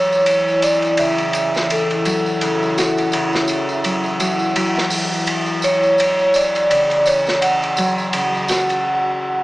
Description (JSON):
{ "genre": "trip hop", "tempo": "84 BPM", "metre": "4/4", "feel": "swing 57% on 16ths", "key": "unclear", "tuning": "A4 = 442 Hz", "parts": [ { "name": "vibraphone with medium mallets", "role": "melody", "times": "0.0-9.4 s", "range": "A4 to F#5", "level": "-18 LUFS", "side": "equal", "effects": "vintage 12-bit sampler grit, dub echo" }, { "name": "deep dark ambient pad", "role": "sustained chords", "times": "0.0-8.8 s", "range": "E4 to E5", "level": "-25 LUFS", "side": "left 2 dB", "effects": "chorus, built-in reverb" }, { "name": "Celtic harp", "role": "arpeggios", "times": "0.0-9.4 s", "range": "C#3 to F#4", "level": "-24 LUFS", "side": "equal", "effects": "low-pass filter, tape echo" }, { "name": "tambourine", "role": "percussion", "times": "0.1-8.8 s", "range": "none", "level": "-30 LUFS", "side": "right 2 dB", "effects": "none" }, { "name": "crunchy breakbeat drum kit", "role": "drums", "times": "0.3-8.8 s", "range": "hi-hat, ride cymbal, snare drum", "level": "-21 LUFS", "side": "equal", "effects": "high-pass filter on cymbals, high-pass filter on hats, high-pass filter on snare, high-pass filter on room" } ], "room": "moderate echo chamber reverb, RT60 2.4 s", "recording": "small speaker sound", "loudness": "-15 LUFS", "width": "side -18 dB against mid", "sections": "0.0-9.4 A section", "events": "none", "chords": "0.0 C#madd11", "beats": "0.27 0.99 | 1.70 2.42 3.13 3.84 | 4.56 5.27 5.99 6.70 | 7.42 8.13 8.84" }